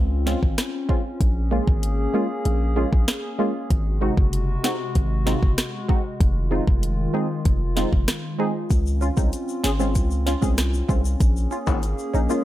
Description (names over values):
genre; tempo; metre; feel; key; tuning
dancehall; 96 BPM; 4/4; straight; Db major; A4 = 440 Hz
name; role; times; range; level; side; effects
hollow soft pad; sustained chords; 0.0-12.4 s; C3 to Ab4; -29 LUFS; left 1 dB; chorus, sidechain pumping
hard-hitting 808-style bass; bass; 0.0-12.3 s; F1 to Db2; -23 LUFS; equal; none
wavetable chord stab; accompaniment; 0.3-12.4 s; Ab3 to Ab4; -25 LUFS; right 1 dB; sidechain pumping
afro-pop drum kit; drums; 0.3-12.0 s; hi-hat, kick drum, rim click, snare drum; -22 LUFS; equal; none
egg shaker and timbales; percussion; 8.7-12.4 s; none; -35 LUFS; left 8 dB; none
room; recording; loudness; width
little or no reverb; none; -20 LUFS; side -14 dB against mid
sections
0.0-8.7 A section; 8.7-12.4 B section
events
none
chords
0.0 Dbmaj7; 1.2 Bbm7; 3.7 Ab7; 6.2 Fm7; 8.7 Dbmaj7; 11.2 Bbm7